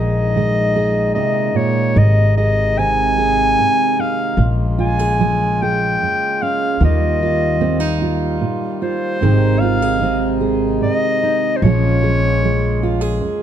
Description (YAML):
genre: acoustic folk-pop ballad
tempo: 75 BPM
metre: 3/4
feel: straight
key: Bb dorian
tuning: A4 = 440 Hz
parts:
  - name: bright clarinet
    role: melody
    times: 0.0-13.2 s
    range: C5 to Ab5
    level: -19 LUFS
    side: left 1 dB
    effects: none
  - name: fingerpicked steel-string acoustic guitar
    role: accompaniment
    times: 0.0-13.4 s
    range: F2 to Ab4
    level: -20 LUFS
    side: right 6 dB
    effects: none
  - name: hand-pumped harmonium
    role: sustained chords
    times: 0.0-13.4 s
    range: Bb2 to F4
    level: -25 LUFS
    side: left 2 dB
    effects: none
  - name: upright bass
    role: bass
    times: 0.0-13.2 s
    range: Ab1 to Eb2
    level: -18 LUFS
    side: left 1 dB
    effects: none
room: moderate large studio reverb, RT60 1.3 s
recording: dark, warm production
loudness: -14 LUFS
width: side -9 dB against mid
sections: 0.0-13.4 A section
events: none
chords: 0.0 Ebsus4/Bb; 2.0 Ab; 4.4 Bbm7; 6.8 Ebadd9; 9.2 Ab; 11.6 Bbm7